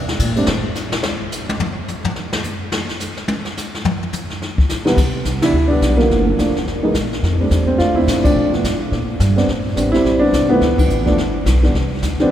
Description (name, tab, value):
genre	jazz piano trio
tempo	213 BPM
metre	4/4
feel	swing 61% on 8ths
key	C major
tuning	A4 = 438 Hz
part	upright bass	bass	0.0-0.6, 5.0-12.3 s	E1 to C3	-20 LUFS	equal	none
part	jazz brush drum kit	drums	0.1-12.3 s	brushed snare drum, crash cymbal, hi-hat, kick drum, ride cymbal, snare drum, toms	-21 LUFS	left 2 dB	none
part	dark concert grand piano	melody	0.4-0.5, 4.9-12.3 s	C2 to F4	-17 LUFS	equal	none
room	wet cathedral reverb, RT60 6.5 s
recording	recorded in a church or concert hall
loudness	-15 LUFS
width	side -11 dB against mid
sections	0.0-5.0 A section; 5.0-12.3 B section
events	grand piano solo 0.0-5.0; drum solo 0.5-5.0; band accent 5.4, 8.2, 10.8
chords	0.5 N.C.; 5.0 Cmaj9; 6.1 Gm9; 6.7 F#; 7.2 F6; 8.4 Bm7b5; 8.9 N.C.; 9.5 Am11; 10.6 Dmadd9; 11.2 G; 11.7 Csus2